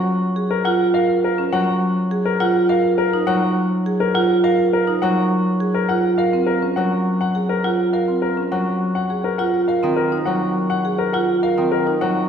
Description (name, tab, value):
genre	classical, minimalist pattern music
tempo	103 BPM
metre	3/4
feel	straight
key	unclear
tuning	A4 = 440 Hz
part	Celtic harp	accompaniment	0.0-12.3 s	Eb3 to Gb3	-22 LUFS	equal	none
part	marimba with medium hard mallets	arpeggios	0.4-12.1 s	C4 to Bb4	-20 LUFS	right 3 dB	none
part	clear grand piano	melody	0.5-12.2 s	Bb4 to Gb5	-22 LUFS	left 5 dB	none
room	wet scoring stage reverb, RT60 1.8 s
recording	recorded in a church or concert hall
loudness	-16 LUFS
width	side -7 dB against mid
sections	0.0-12.3 A section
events	none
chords	0.0 Gbadd9; 2.4 N.C.; 5.9 Gb; 9.4 Ab9 (rootless)